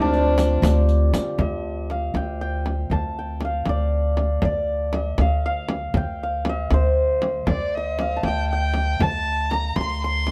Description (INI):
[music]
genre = Persian modal ensemble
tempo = 79 BPM (dotted quarters)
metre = 6/8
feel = straight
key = D dastgah shur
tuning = A4 = 439 Hz
[part]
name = santur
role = melody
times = 0.0-10.3 s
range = C4 to C6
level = -27 LUFS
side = equal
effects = none
[part]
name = warm violin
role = second line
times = 0.0-0.8, 7.5-10.3 s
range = D4 to C6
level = -29 LUFS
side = equal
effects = none
[part]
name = upright bass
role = bass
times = 0.0-10.3 s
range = D2 to D3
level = -25 LUFS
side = equal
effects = none
[part]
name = riq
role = percussion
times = 0.1-1.3 s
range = none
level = -36 LUFS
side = equal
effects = none
[part]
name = frame drum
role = percussion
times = 0.4-10.3 s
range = none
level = -29 LUFS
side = equal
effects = none
[sound]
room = light reverb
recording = dark, warm production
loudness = -22 LUFS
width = mono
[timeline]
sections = 0.0-1.4 A section; 1.4-10.3 B section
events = none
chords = none